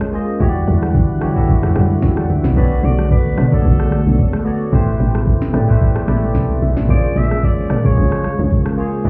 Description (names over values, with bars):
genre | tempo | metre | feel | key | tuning
amapiano | 111 BPM | 4/4 | swing 55% on 16ths | unclear | A4 = 440 Hz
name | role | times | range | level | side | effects
barky tine electric piano | accompaniment | 0.0-9.1 s | E3 to B5 | -24 LUFS | equal | analog chorus
ensemble organ-string | sustained chords | 0.0-9.1 s | B2 to F#5 | -26 LUFS | equal | phaser, ensemble chorus, sidechain pumping
smooth R&B drum kit | drums | 0.0-9.1 s | kick drum, rim click, shaker, snare drum | -19 LUFS | equal | none
congas | percussion | 0.0-8.8 s | none | -26 LUFS | equal | none
tight log drum bass | bass | 0.4-9.1 s | A1 to E3 | -19 LUFS | equal | none
growling alto saxophone | melody | 2.6-8.7 s | A4 to E5 | -28 LUFS | equal | delay
room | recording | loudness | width
little or no reverb | heard muffled through a wall, club reverb, EQ | -16 LUFS | mono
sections
0.0-9.1 A section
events
tine electric piano fill 5.8-6.9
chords
0.4 Em9; 2.6 Bm9; 4.7 Am9; 6.9 A#m9